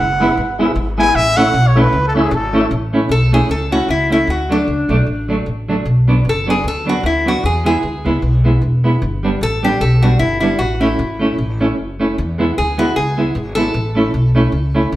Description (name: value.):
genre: ska.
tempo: 152 BPM.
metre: 4/4.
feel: swing 55% on 8ths.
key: A major.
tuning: A4 = 440 Hz.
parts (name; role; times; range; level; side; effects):
breathy trumpet; melody; 0.0-2.7 s; G#4 to G#5; -16 LUFS; equal; none.
upright bass; bass; 0.0-15.0 s; E1 to E2; -17 LUFS; equal; none.
clean electric guitar; accompaniment; 0.2-14.9 s; F#3 to E4; -18 LUFS; right 1 dB; tremolo.
mellow tonewheel organ; stabs; 0.2-2.7 s; E4 to E5; -23 LUFS; left 2 dB; chorus vibrato, fast rotary speaker.
lap resonator guitar; melody; 3.1-14.9 s; D4 to A4; -19 LUFS; left 1 dB; none.
room: wet stone room reverb, RT60 1.0 s.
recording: band playing live in one room.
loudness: -13 LUFS.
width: side -15 dB against mid.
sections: 0.0-2.7 A section; 2.7-15.0 B section.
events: trumpet solo 0.0-2.7.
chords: 0.0 E; 1.2 A; 4.3 D; 5.9 Bm; 7.4 E; 9.0 G; 10.6 A; 12.2 E; 13.7 A.